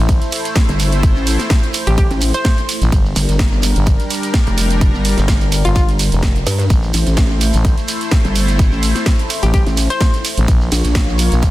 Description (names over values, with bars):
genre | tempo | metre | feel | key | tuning
bass house | 127 BPM | 4/4 | swing 54% on 16ths | A phrygian | A4 = 442 Hz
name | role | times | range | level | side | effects
sweeping resonant pad | sustained chords | 0.0-11.5 s | G3 to Db5 | -23 LUFS | left 1 dB | chorus, sidechain pumping
growling FM bass | bass | 0.0-11.5 s | F1 to Bb1 | -15 LUFS | equal | tube saturation, sidechain pumping
electronic kick drum | drums | 0.1-11.5 s | none | -14 LUFS | equal | none
house drum kit | drums | 0.1-11.5 s | hi-hat, ride cymbal, snare drum | -22 LUFS | right 2 dB | none
shekere | percussion | 0.1-11.5 s | none | -28 LUFS | right 4 dB | none
pulsing pluck wobble bass | bass | 0.7-11.3 s | F1 to G2 | -15 LUFS | equal | distortion, chorus, sidechain pumping
hollow square pluck | melody | 1.9-5.8, 9.4-10.5 s | F4 to C5 | -23 LUFS | left 1 dB | chorus, dub echo
room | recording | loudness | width
little or no reverb | dense, heavily limited modern master | -12 LUFS | side -16 dB against mid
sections
0.0-11.5 A section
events
none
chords
0.0 Am; 2.9 Gm; 6.7 Am; 10.5 Bbm